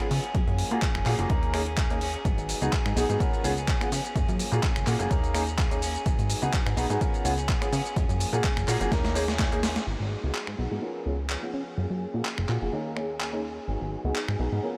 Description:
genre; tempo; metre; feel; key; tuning
filtered disco house; 126 BPM; 4/4; swing 54% on 16ths; G# dorian; A4 = 440 Hz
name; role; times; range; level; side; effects
warm grand piano; accompaniment; 0.0-14.8 s; A#3 to A#4; -34 LUFS; equal; phaser, sidechain pumping, low-pass filter
clean electric guitar; riff; 0.0-14.8 s; E#3 to G#4; -38 LUFS; equal; sidechain pumping, low-pass filter
dusty soul sampler-style drum kit; drums; 0.0-14.4 s; finger snaps, handclaps, hi-hat, shaker, snare drum; -36 LUFS; equal; overdrive, sidechain pumping on hats, studio reverb, sidechain pumping on perc
plucky analog bass; bass; 0.1-14.6 s; F#1 to C#3; -32 LUFS; equal; sidechain pumping, low-pass filter
electronic kick drum; drums; 0.3-9.5 s; none; -30 LUFS; equal; studio reverb
warm symphonic violin section; sustained chords; 9.9-14.8 s; G#4 to G#5; -43 LUFS; equal; sidechain pumping, low-pass filter
room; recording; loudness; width
light reverb; none; -27 LUFS; mono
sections
0.0-9.9 A section; 9.9-14.8 B section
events
drum fill 8.9-9.9; band accent 9.8; filter sweep 9.9-14.8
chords
0.3 F#maj9; 1.3 D#7sus4; 2.3 G#m7; 3.2 C#7; 4.2 F#maj9; 5.1 D#7sus4; 6.1 G#m7; 7.0 C#7; 8.0 F#maj9; 8.9 D#7sus4; 9.9 G#m7; 10.8 C#7; 11.8 F#maj9; 12.7 D#7sus4; 13.7 G#m7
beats
| 0.35 0.82 1.30 1.78 | 2.25 2.73 3.20 3.68 | 4.16 4.63 5.11 5.58 | 6.06 6.54 7.01 7.49 | 7.97 8.44 8.92 9.39 | 9.87 10.35 10.82 11.30 | 11.78 12.25 12.73 13.20 | 13.68 14.16 14.63

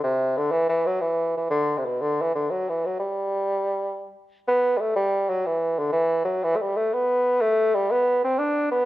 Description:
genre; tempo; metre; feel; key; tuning
celtic folk; 122 BPM (dotted quarters); 9/8; straight; G major; A4 = 441 Hz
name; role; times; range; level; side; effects
mellow bassoon; solo; 0.0-8.9 s; B2 to D4; -21 LUFS; equal; slapback echo
room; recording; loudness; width
light reverb; close, detailed microphones; -21 LUFS; side -15 dB against mid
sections
0.0-4.5 A section; 4.5-8.9 B section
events
none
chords
none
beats
| 0.03 0.52 1.01 | 1.51 2.00 2.49 | 2.99 3.48 3.97 | 4.46 4.95 5.44 | 5.93 6.42 6.91 | 7.40 7.89 8.38

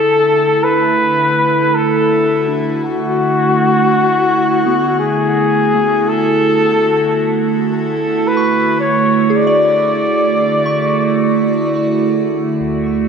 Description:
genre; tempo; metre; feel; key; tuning
ambient; 55 BPM; 3/4; straight; D lydian; A4 = 440 Hz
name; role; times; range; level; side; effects
mellow flugelhorn; melody; 0.0-12.1 s; F#4 to D5; -14 LUFS; left 2 dB; diffuse ambient delay
evolving wavetable pad; sustained chords; 0.0-13.1 s; D3 to F#4; -16 LUFS; right 3 dB; phaser, built-in reverb
soft synth bell; arpeggios; 2.5-13.1 s; A3 to C#6; -23 LUFS; left 2 dB; chorus, diffuse ambient delay
warm sub bass; bass; 12.6-13.1 s; D2; -30 LUFS; left 1 dB; none
room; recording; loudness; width
wet concert hall reverb, RT60 2.3 s; none; -12 LUFS; side -6 dB against mid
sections
0.0-12.6 A section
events
fade-in on synth bell 0.0-12.6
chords
0.0 Dmaj9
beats
0.60 1.69 | 2.78 3.87 4.96 | 6.05 7.14 8.23 | 9.32 10.41 11.51 | 12.60

